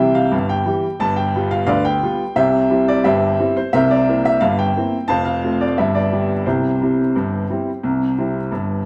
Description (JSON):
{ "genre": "ragtime piano", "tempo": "88 BPM", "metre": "2/4", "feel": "straight", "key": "C major", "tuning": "A4 = 440 Hz", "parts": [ { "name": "clear upright piano", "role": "solo", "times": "0.0-8.9 s", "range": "F1 to A5", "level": "-18 LUFS", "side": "equal", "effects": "none" } ], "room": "wet stone room reverb, RT60 1.2 s", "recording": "band playing live in one room", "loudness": "-18 LUFS", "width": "mono", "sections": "0.0-8.9 A section", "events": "none", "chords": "0.0 C; 1.0 G7; 2.4 C; 3.7 C7; 5.1 F; 5.8 G; 6.4 C" }